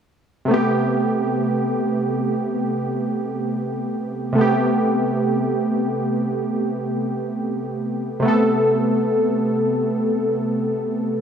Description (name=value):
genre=R&B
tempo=free time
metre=none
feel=none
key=A minor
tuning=A4 = 440 Hz
part: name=warm analog keys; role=solo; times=0.5-11.2 s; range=C3 to A4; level=-19 LUFS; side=right 1 dB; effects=chorus
room=moderate scoring stage reverb, RT60 1.4 s, digital ambience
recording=small room ambience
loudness=-19 LUFS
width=side -7 dB against mid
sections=0.5-11.2 A section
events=none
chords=0.5 Am9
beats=free time